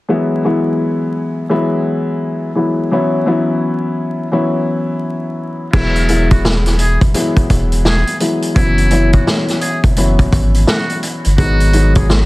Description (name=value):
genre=hip hop, boom-bap hip-hop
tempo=85 BPM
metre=4/4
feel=swing 62% on 16ths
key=unclear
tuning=A4 = 440 Hz
part: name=dark upright piano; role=accompaniment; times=0.1-12.3 s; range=D#3 to E4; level=-16 LUFS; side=left 1 dB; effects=high-pass filter, low-pass filter
part: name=trumpet with metal mute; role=melody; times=5.7-12.1 s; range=E4 to G#4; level=-22 LUFS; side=right 1 dB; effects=high-pass filter, low-pass filter, digital delay
part: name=warm sub bass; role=bass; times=5.7-12.3 s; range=E1 to G#1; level=-14 LUFS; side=equal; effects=none
part: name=vintage drum kit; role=drums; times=5.7-12.3 s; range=crash cymbal, hi-hat, kick drum, snare drum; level=-15 LUFS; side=equal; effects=none
room=studio ambience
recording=dense, heavily limited modern master, vinyl crackle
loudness=-12 LUFS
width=side -20 dB against mid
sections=0.1-5.7 A section; 5.7-12.3 B section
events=none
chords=0.1 Eadd9; 2.9 F#7sus4; 5.7 Eadd9; 8.6 F#7sus4; 11.4 G#m7